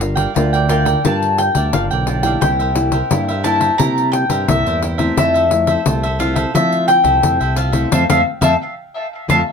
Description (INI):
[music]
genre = samba and choro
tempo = 87 BPM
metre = 4/4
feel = straight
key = F major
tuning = A4 = 438 Hz
[part]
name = bowl-back mandolin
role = melody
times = 0.0-9.4 s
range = E5 to Bb5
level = -17 LUFS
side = left 2 dB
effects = tape echo
[part]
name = cavaquinho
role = accompaniment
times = 0.0-9.4 s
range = E4 to G5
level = -23 LUFS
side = right 5 dB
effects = none
[part]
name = nylon-string guitar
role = accompaniment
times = 0.0-9.4 s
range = G2 to Bb4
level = -21 LUFS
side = left 2 dB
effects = none
[part]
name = fingered electric bass with an envelope filter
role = bass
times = 0.0-9.4 s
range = G1 to F3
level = -20 LUFS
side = right 1 dB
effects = none
[part]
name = pandeiro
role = percussion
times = 0.0-9.5 s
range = none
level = -21 LUFS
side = left 4 dB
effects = none
[sound]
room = moderate small room reverb, RT60 0.5 s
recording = none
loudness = -13 LUFS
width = side -6 dB against mid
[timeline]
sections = 0.0-9.5 A section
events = band accent 7.9-9.5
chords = 0.0 Gm7; 2.4 C7; 5.2 Fmaj7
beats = 0.36 1.04 1.73 | 2.42 3.11 3.80 4.48 | 5.17 5.86 6.54 7.23 | 7.92 8.61 9.29